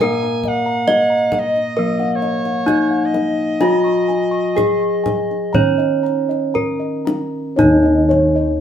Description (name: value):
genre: Javanese gamelan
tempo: 57-70 BPM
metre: 4/4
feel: straight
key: Eb slendro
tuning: A4 = 439 Hz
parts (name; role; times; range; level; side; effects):
- gamelan-type bronze metallophone; melody; 0.0-8.6 s; Eb4 to Eb5; -18 LUFS; left 1 dB; none
- bright reedy soprano recorder; second line; 0.0-5.6 s; Db5-24c to Ab5; -23 LUFS; right 1 dB; none
- gamelan-type bronze metallophone; accompaniment; 0.0-8.6 s; Eb3 to Db4-25c; -24 LUFS; right 3 dB; none
- gamelan-type bossed gongs; arpeggios; 0.0-8.6 s; Db5-25c to Db6-25c; -24 LUFS; left 3 dB; none
- gamelan-type bossed gongs; bass; 0.0-8.6 s; Eb2 to Bb4; -22 LUFS; right 1 dB; none
- kendang; percussion; 0.0-8.5 s; none; -24 LUFS; left 2 dB; none
- gamelan-type bronze metallophone; arpeggios; 7.6-8.6 s; Db5-25c to Eb5; -25 LUFS; right 1 dB; none
room: wet studio reverb, RT60 0.8 s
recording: band playing live in one room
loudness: -14 LUFS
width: side -9 dB against mid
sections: 0.0-7.6 A section; 7.6-8.6 B section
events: none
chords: none